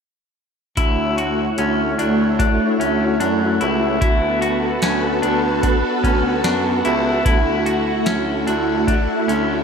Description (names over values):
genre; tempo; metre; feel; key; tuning
dream pop; 74 BPM; 4/4; straight; D major; A4 = 441 Hz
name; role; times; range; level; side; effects
string machine, violins; sustained chords; 0.8-9.6 s; A3 to C#5; -19 LUFS; right 1 dB; ensemble chorus
semi-hollow electric guitar; arpeggios; 0.8-9.6 s; C#4 to F#4; -22 LUFS; left 2 dB; wide subtle chorus, ping-pong delay
warm baritone saxophone; bass; 0.8-9.6 s; C#2 to F#2; -24 LUFS; equal; none
booming analog drum machine; drums; 0.8-9.5 s; hi-hat, kick drum, snare drum; -20 LUFS; equal; overdrive, gated reverb
room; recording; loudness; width
wet plate reverb, RT60 3.0 s; bright 1980s-style digital production; -16 LUFS; side -6 dB against mid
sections
0.8-9.6 A section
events
none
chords
0.8 Dmaj7; 4.0 Bm11; 7.3 Dmaj7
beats
| 0.77 1.58 2.39 3.20 | 4.01 4.83 5.64 6.45 | 7.26 8.07 8.88